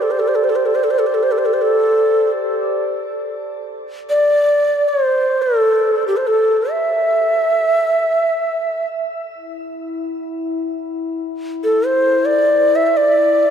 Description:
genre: world meditative, free-time meditation music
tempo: free time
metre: none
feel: none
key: unclear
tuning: A4 = 438 Hz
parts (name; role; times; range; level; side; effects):
- breathy mellow Native American-style cedar flute; melody; 0.0-13.5 s; G4 to E5; -15 LUFS; equal; shimmer reverb, diffuse ambient delay
- glass harmonica; texture; 0.0-2.8, 9.3-13.5 s; E4 to D5; -22 LUFS; equal; shimmer reverb
room: wet huge ambient reverb, RT60 4.5 s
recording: none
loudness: -14 LUFS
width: side -8 dB against mid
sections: 0.0-13.5 A section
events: none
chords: none

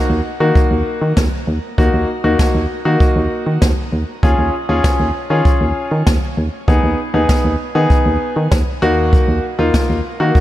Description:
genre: synth-pop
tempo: 98 BPM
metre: 4/4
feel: straight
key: Eb minor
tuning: A4 = 439 Hz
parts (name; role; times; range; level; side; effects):
- clear concert grand piano; accompaniment; 0.0-10.4 s; Bb3 to Ab4; -18 LUFS; left 1 dB; shimmer reverb
- solid FM bass; bass; 0.1-10.3 s; Eb2 to Eb3; -17 LUFS; equal; none
- jazz brush drum kit; drums; 0.6-10.4 s; kick drum, snare drum; -15 LUFS; equal; none
room: light reverb, small room ambience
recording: dark, warm production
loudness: -13 LUFS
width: side -14 dB against mid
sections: 0.0-10.4 A section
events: none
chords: 0.0 Ebm; 4.2 Db/Eb; 6.7 Abm/Eb; 8.8 Ebm

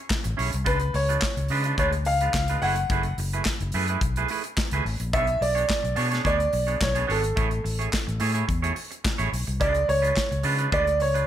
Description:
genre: disco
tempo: 107 BPM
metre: 4/4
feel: straight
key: B dorian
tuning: A4 = 440 Hz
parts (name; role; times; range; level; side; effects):
- modern studio drum kit; drums; 0.1-11.3 s; handclaps, hi-hat, kick drum, snare drum; -28 LUFS; left 1 dB; none
- semi-hollow electric guitar; accompaniment; 0.2-11.3 s; G#3 to C#5; -29 LUFS; right 5 dB; none
- fingered electric bass; bass; 0.3-11.2 s; F#1 to C#3; -27 LUFS; left 1 dB; none
- clear baby grand piano; melody; 0.7-11.3 s; A4 to F#5; -25 LUFS; right 1 dB; slapback echo
room: light reverb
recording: none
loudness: -22 LUFS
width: side -10 dB against mid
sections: 0.0-11.3 A section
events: none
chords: 0.0 Amaj7; 0.7 C#7b9; 2.6 F#m11; 5.1 Bm69; 7.4 Amaj7; 9.6 C#7b9

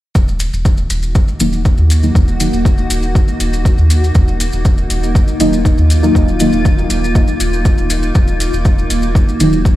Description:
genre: dub techno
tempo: 120 BPM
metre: 4/4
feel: straight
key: Eb minor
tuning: A4 = 440 Hz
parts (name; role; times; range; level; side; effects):
- granular cloud pad; sustained chords; 1.1-9.8 s; Bb3 to Gb4; -20 LUFS; equal; built-in reverb, sidechain pumping
- soft dub sub bass; bass; 0.2-9.7 s; Eb1 to Eb2; -16 LUFS; equal; sidechain pumping
- electronic kick drum; drums; 0.2-9.8 s; none; -11 LUFS; equal; none
- maracas; percussion; 0.2-9.8 s; none; -26 LUFS; left 1 dB; none
- electronic hi-hat; drums; 0.4-9.5 s; none; -24 LUFS; left 2 dB; none
- deep mellow chord stab; stabs; 1.4-9.6 s; Eb3 to Eb4; -16 LUFS; equal; chorus, phaser, sidechain pumping, dub echo
room: light reverb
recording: played on a big sound system in a bare room, stone room reverb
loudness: -11 LUFS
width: side -15 dB against mid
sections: 0.2-9.8 A section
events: none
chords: 0.2 Ebm

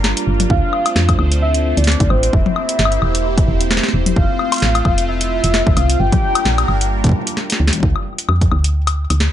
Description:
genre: IDM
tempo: 131 BPM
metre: 4/4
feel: swing 56% on 16ths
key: unclear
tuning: A4 = 436 Hz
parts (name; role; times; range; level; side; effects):
- phased analog pad; sustained chords; 0.0-7.8 s; G3 to C5; -23 LUFS; equal; phaser, chorus, sidechain pumping
- woody FM bass; bass; 0.0-9.3 s; E1 to F2; -16 LUFS; equal; tube saturation
- booming analog drum machine; drums; 0.0-9.3 s; hi-hat, snare drum, toms, woodblock; -19 LUFS; left 3 dB; none
- warm velvety synth lead; melody; 0.5-7.4 s; C5 to G5; -22 LUFS; equal; chorus, tremolo, cassette tape, dub echo
- electronic kick drum; drums; 0.5-8.5 s; none; -17 LUFS; equal; none
room: little or no reverb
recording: nothing above 10.9 kHz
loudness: -13 LUFS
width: side -11 dB against mid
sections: 0.0-7.8 A section; 7.8-9.3 B section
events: drum fill 7.4-7.8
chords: 0.0 Gm7; 0.5 Dm7; 2.3 C7/E; 4.2 Fmaj7; 6.0 Gm7; 7.8 Dm

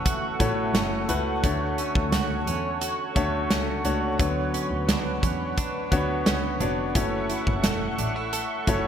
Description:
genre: 1980s-style pop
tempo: 87 BPM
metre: 4/4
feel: straight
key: A major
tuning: A4 = 442 Hz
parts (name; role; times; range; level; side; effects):
- clear grand piano; accompaniment; 0.0-8.9 s; D3 to C#5; -28 LUFS; left 2 dB; none
- warm analog pad; sustained chords; 0.0-8.9 s; A4 to C#6; -31 LUFS; right 1 dB; chorus
- direct-recorded clean electric guitar; riff; 0.0-8.9 s; E3 to A4; -33 LUFS; right 4 dB; wide subtle chorus, ping-pong delay
- warm double bass; bass; 0.0-8.9 s; E1 to E2; -31 LUFS; equal; none
- big rock drum kit; drums; 0.1-8.8 s; hi-hat, kick drum, snare drum; -27 LUFS; right 1 dB; none
room: light reverb, studio reverb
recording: bright 1980s-style digital production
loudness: -23 LUFS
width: side -8 dB against mid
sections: 0.0-8.9 A section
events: none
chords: 0.0 A6/E; 1.4 Dmaj7; 4.2 Bmadd9; 7.0 A6

